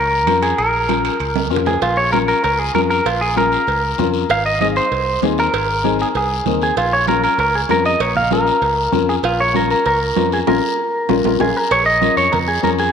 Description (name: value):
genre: latin, cumbia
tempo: 194 BPM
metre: 4/4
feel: straight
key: Bb minor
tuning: A4 = 440 Hz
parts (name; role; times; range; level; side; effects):
- clean electric guitar; melody; 0.0-12.9 s; F4 to F5; -16 LUFS; right 1 dB; spring reverb
- fingered electric bass; bass; 0.0-12.9 s; Ab1 to F2; -24 LUFS; right 1 dB; none
- dark upright piano; accompaniment; 0.3-12.8 s; C4 to Bb4; -21 LUFS; left 11 dB; none
- congas; percussion; 0.3-12.8 s; none; -25 LUFS; right 14 dB; none
- guiro; percussion; 0.3-12.9 s; none; -31 LUFS; left 13 dB; none
- timbales and cowbell; percussion; 0.3-12.5 s; none; -26 LUFS; right 12 dB; none
room: moderate plate reverb, RT60 3.1 s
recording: 1960s-style stereo with parts hard left and right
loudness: -14 LUFS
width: side -7 dB against mid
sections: 0.0-1.8 A section; 1.8-11.7 B section; 11.7-12.9 C section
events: drum fill 1.4-1.8, 11.2-11.7; band accent 10.5-11.7; upright piano fill 10.8-11.7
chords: 0.0 Bbm; 4.3 Ab; 6.8 Bbm